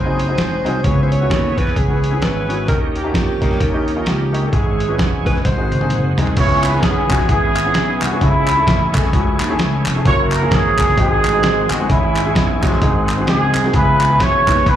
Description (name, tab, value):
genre	uptempo gospel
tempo	130 BPM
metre	4/4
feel	swing 58% on 8ths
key	C# minor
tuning	A4 = 439 Hz
part	breathy alto saxophone	melody	0.0-6.1 s	F#4 to C#5	-24 LUFS	right 2 dB	slapback echo
part	bright tonewheel organ	sustained chords	0.0-14.8 s	D#3 to G#4	-26 LUFS	right 3 dB	slow rotary speaker, overdrive, chorus vibrato
part	gritty slap bass	bass	0.0-14.8 s	E1 to G2	-20 LUFS	equal	overdrive
part	clear baby grand piano	accompaniment	0.1-14.8 s	G#2 to B4	-22 LUFS	left 2 dB	slapback echo
part	dusty soul sampler-style drum kit	drums	0.2-14.8 s	crash cymbal, hi-hat, kick drum, snare drum, toms	-18 LUFS	equal	none
part	warm horn section	melody	6.4-14.8 s	G#3 to C#5	-17 LUFS	right 1 dB	slapback echo
part	group handclap	percussion	6.6-14.6 s	none	-25 LUFS	left 1 dB	slapback echo
room	light reverb, studio reverb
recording	live gig heard through the venue's PA, club reverb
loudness	-13 LUFS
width	side -10 dB against mid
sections	0.0-6.4 A section; 6.4-14.8 B section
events	drum fill 5.4-6.4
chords	0.0 G#7; 0.8 C#m7; 2.7 D#7; 4.5 C#m/G#; 5.4 G#7; 6.4 C#m7; 8.2 Amaj7; 10.1 F#7; 11.0 G#7; 11.9 C#m/G#; 12.8 G#7; 13.7 C#m7